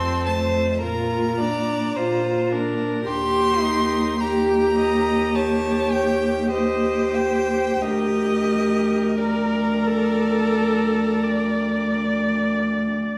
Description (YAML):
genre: classical, slow romantic movement for string quartet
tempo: 43-55 BPM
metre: 4/4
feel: rubato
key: unclear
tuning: A4 = 440 Hz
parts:
  - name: rich violin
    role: melody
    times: 0.0-12.6 s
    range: D5 to C6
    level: -30 LUFS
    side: equal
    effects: none
  - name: clear violin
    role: second line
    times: 0.0-12.6 s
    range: Eb4 to Eb5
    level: -29 LUFS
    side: equal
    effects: none
  - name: clear viola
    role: accompaniment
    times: 0.0-13.2 s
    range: A3 to D5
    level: -26 LUFS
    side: equal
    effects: none
  - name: clear cello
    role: bass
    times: 0.0-13.0 s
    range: D2 to Bb2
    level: -25 LUFS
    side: equal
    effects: none
room: wet recital hall reverb, RT60 1.4 s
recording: heard from further back in the room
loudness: -21 LUFS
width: mono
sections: 0.0-13.2 A section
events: none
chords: 0.0 F; 0.8 Bb; 3.1 Eb; 7.8 Gm/D; 10.6 D5